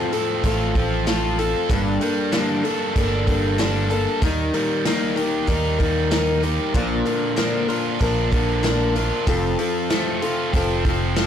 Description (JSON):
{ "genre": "folk rock and heartland rock", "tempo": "95 BPM", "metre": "4/4", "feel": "straight", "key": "unclear", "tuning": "A4 = 440 Hz", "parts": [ { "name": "picked steel-string acoustic guitar", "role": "accompaniment", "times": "0.0-11.3 s", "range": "G2 to Bb4", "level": "-23 LUFS", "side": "left 4 dB", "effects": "none" }, { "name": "overdriven electric guitar", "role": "riff", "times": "0.0-11.3 s", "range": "F2 to A4", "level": "-24 LUFS", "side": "right 3 dB", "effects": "none" }, { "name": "natural country drum kit", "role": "drums", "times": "0.1-11.3 s", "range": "hi-hat, kick drum, snare drum", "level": "-26 LUFS", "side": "right 1 dB", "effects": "none" }, { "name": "picked electric bass", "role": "bass", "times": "0.4-11.3 s", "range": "F1 to Eb2", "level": "-24 LUFS", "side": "right 1 dB", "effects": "transformer saturation" } ], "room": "light reverb, small room ambience", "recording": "blown-out, overdriven recording, overdrive", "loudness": "-18 LUFS", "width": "side -9 dB against mid", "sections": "0.0-11.3 A section", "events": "none", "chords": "0.0 F/A; 1.7 Gmadd9; 4.2 Eb; 6.7 Bb; 9.3 F" }